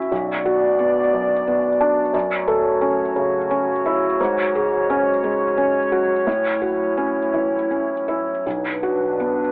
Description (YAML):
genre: neoclassical piano and strings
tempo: 53-60 BPM (dotted quarters)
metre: 6/8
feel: rubato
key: F# minor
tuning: A4 = 441 Hz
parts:
  - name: felt-muted upright piano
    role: accompaniment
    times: 0.0-9.5 s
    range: B1 to A4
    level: -24 LUFS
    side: equal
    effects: none
  - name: dark analog pad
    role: sustained chords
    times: 0.0-9.5 s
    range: F#3 to E5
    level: -23 LUFS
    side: equal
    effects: chorus
room: light reverb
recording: telephone sound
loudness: -20 LUFS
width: mono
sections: 0.0-9.5 A section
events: none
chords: 0.1 Bm; 2.1 F#m7; 4.2 C#sus4/G#; 6.3 F#m7; 8.4 Bm